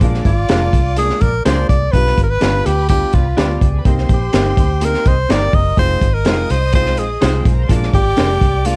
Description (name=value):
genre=uptempo 1960s-style soul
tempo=125 BPM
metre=4/4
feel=straight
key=C minor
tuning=A4 = 439 Hz
part: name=clear studio string section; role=second line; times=0.0-8.8 s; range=F4 to Eb6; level=-33 LUFS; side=equal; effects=none
part: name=clear upright piano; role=accompaniment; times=0.0-8.8 s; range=G3 to G4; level=-26 LUFS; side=equal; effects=none
part: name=vintage muted fingered electric bass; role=bass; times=0.0-8.8 s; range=F1 to D2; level=-20 LUFS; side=equal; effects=none
part: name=crunchy breakbeat drum kit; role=drums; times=0.0-8.8 s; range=hi-hat, kick drum, snare drum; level=-19 LUFS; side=equal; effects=none
part: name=clear tenor saxophone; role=melody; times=0.3-8.8 s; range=F4 to Eb5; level=-21 LUFS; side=equal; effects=none
part: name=electric guitar through a small old amp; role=stabs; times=0.5-8.3 s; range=D4 to C5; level=-24 LUFS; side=equal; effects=none
part: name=dark horn section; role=second line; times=1.2-7.7 s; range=G3 to Eb5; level=-30 LUFS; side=equal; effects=none
room=little or no reverb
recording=dark, warm production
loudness=-15 LUFS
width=mono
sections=0.0-8.8 A section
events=none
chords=0.0 Bb7; 1.9 G7; 3.9 Cm7; 5.8 Fm7; 7.7 Bb7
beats=| 0.02 0.50 0.97 1.46 | 1.93 2.41 2.89 3.37 | 3.85 4.33 4.81 5.29 | 5.77 6.25 6.73 7.21 | 7.69 8.18 8.65